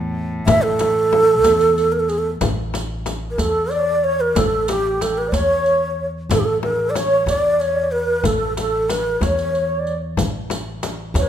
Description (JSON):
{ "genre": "Persian modal ensemble", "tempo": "62 BPM (dotted quarters)", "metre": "6/8", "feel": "straight", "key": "A dastgah homayun", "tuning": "A4 = 440 Hz", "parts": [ { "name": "upright bass", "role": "bass", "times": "0.0-11.3 s", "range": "A1 to E2", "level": "-25 LUFS", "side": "equal", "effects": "none" }, { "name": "rich cello", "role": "drone", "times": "0.0-2.5 s", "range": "A2", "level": "-30 LUFS", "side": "left 1 dB", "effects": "none" }, { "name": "breathy low ney", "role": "melody", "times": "0.5-11.3 s", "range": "G4 to E5", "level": "-17 LUFS", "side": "right 1 dB", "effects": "none" }, { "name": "frame drum", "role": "percussion", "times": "0.5-11.3 s", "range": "none", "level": "-24 LUFS", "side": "left 5 dB", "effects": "none" }, { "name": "riq", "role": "percussion", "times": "0.5-11.3 s", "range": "none", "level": "-30 LUFS", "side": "right 3 dB", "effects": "none" }, { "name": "reedy long shakuhachi", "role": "second line", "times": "3.4-11.3 s", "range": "G4 to D5", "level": "-23 LUFS", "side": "right 4 dB", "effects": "none" } ], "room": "light reverb", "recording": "minimal, uncompressed stereo recording", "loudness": "-16 LUFS", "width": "side -10 dB against mid", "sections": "0.0-2.4 A section; 2.4-11.3 B section", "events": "none", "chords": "none" }